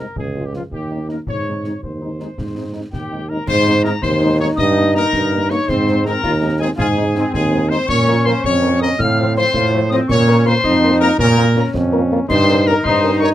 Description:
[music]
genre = military-style march for wind band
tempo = 109 BPM (dotted quarters)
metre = 6/8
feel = straight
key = Ab major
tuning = A4 = 440 Hz
[part]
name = mellow trumpet section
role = melody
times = 0.0-13.3 s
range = F4 to F5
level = -21 LUFS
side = left 2 dB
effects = none
[part]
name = mellow French horn section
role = accompaniment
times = 0.0-13.3 s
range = F3 to C5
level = -22 LUFS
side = left 2 dB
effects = none
[part]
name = warm tuba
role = bass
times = 0.0-13.3 s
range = Db2 to Bb2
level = -17 LUFS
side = right 2 dB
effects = none
[part]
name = concert bass drum, concert snare drum and clash cymbals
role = drums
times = 0.2-13.3 s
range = none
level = -27 LUFS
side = equal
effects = none
[part]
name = bright piccolo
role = second line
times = 2.9-13.3 s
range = G5 to F6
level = -22 LUFS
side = left 5 dB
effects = none
[part]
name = warm trombone section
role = sustained chords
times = 4.0-13.3 s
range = A3 to F4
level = -20 LUFS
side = left 1 dB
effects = none
[sound]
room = moderate booth ambience, RT60 0.3 s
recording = close, detailed microphones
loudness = -13 LUFS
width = side -12 dB against mid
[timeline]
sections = 0.0-3.5 A section; 3.5-13.3 A section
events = none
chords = 0.2 Db; 0.7 Eb7; 1.3 Ab; 4.6 Eb/G; 5.7 Ab; 7.9 Bbm; 9.0 F/A; 10.1 Bbm; 12.3 Eb7/G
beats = | 0.17 0.72 | 1.27 1.83 | 2.38 2.93 | 3.48 4.03 | 4.59 5.14 | 5.69 6.24 | 6.79 7.34 | 7.89 8.44 | 8.99 9.54 | 10.09 10.64 | 11.20 11.75 | 12.30 12.85

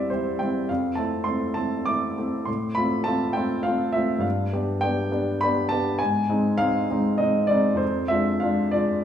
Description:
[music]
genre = classical, romantic character piece for solo piano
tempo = 101 BPM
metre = 3/4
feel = rubato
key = unclear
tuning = A4 = 440 Hz
[part]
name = warm baby grand piano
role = solo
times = 0.0-9.0 s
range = E2 to D6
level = -21 LUFS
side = equal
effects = none
[sound]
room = wet large studio reverb, RT60 1.3 s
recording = heard from further back in the room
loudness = -21 LUFS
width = side -9 dB against mid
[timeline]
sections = 0.0-9.0 A section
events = none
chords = 0.0 C/E; 0.7 Fmaj7; 2.5 F/A; 4.2 G7; 6.0 Ab; 7.8 Ddim/F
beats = 0.11 | 0.69 1.27 1.87 | 2.47 3.07 3.66 | 4.25 4.82 5.41 | 5.99 6.59 7.21 | 7.81 8.42

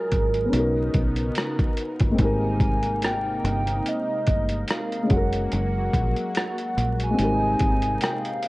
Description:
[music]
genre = lo-fi hip hop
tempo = 72 BPM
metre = 4/4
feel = swing 56% on 16ths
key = Ab major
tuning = A4 = 440 Hz
[part]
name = hollow clarinet-like synth lead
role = melody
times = 0.0-8.5 s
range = Bb4 to Ab5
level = -28 LUFS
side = right 1 dB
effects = chorus, phaser
[part]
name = felt-muted upright piano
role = accompaniment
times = 0.0-8.5 s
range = G3 to G5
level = -27 LUFS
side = left 1 dB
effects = none
[part]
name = warm analog pad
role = sustained chords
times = 0.0-8.5 s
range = C3 to Bb4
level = -31 LUFS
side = equal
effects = chorus
[part]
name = deep dub fingered electric bass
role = bass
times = 0.1-8.0 s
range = Gb1 to B1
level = -26 LUFS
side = equal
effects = none
[part]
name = boom bap sampler-style drum kit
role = drums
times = 0.1-8.5 s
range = hi-hat, kick drum, rim click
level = -24 LUFS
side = equal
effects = overdrive
[sound]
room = light reverb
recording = worn, warbling old tape, cassette tape, vinyl crackle, warbly pitch drift, nothing above 10.4 kHz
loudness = -21 LUFS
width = side -20 dB against mid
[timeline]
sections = 0.0-8.5 A section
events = felt piano fill 7.6-8.5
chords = 0.0 Gbmaj9; 0.5 Bmaj9; 2.2 Abmaj9; 5.1 Gbadd9; 7.2 Abmaj9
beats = 0.52 1.36 | 2.19 3.02 3.86 4.69 | 5.52 6.36 7.19 8.02

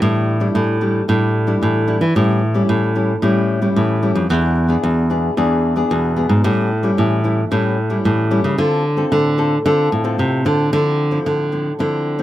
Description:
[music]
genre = samba and choro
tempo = 112 BPM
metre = 4/4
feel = straight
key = D minor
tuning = A4 = 440 Hz
[part]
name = nylon-string guitar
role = accompaniment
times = 0.0-12.2 s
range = A2 to A4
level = -20 LUFS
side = left 2 dB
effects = none
[part]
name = nylon-string guitar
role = bass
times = 0.0-12.2 s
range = E2 to E3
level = -16 LUFS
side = right 1 dB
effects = none
[sound]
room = light reverb, small room ambience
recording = rough home demo mix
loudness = -14 LUFS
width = side -14 dB against mid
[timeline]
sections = 0.0-10.7 A section; 10.7-12.2 B section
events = none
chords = 0.0 A7sus4; 2.2 A7; 4.3 E7; 6.4 A7; 8.6 Dm7; 10.7 Dm9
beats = | 0.01 0.55 1.08 1.62 | 2.15 2.69 3.23 3.76 | 4.30 4.83 5.37 5.91 | 6.44 6.98 7.51 8.05 | 8.58 9.12 9.65 10.19 | 10.72 11.26 11.80

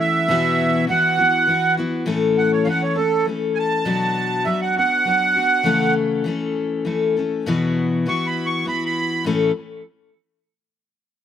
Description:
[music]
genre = rock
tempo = 100 BPM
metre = 3/4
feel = straight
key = A major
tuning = A4 = 441 Hz
[part]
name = accordion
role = melody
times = 0.0-9.3 s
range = A4 to C#6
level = -19 LUFS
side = right 3 dB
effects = light tremolo tuning
[part]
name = picked steel-string acoustic guitar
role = accompaniment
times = 0.0-9.5 s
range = E2 to A4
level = -20 LUFS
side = left 4 dB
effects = none
[sound]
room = little or no reverb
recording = recorded outdoors, with no room sound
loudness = -17 LUFS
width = side -9 dB against mid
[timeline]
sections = 0.0-2.1 A section; 2.1-9.3 B section; 9.3-11.1 C section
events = accordion solo 2.1-9.3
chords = 0.3 Esus2; 2.1 A; 3.9 Bm; 5.7 A/C#; 7.5 Esus2; 9.3 A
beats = | 0.29 0.89 1.48 | 2.08 2.68 3.28 | 3.88 4.47 5.07 | 5.67 6.27 6.87 | 7.47 8.07 8.67 | 9.27

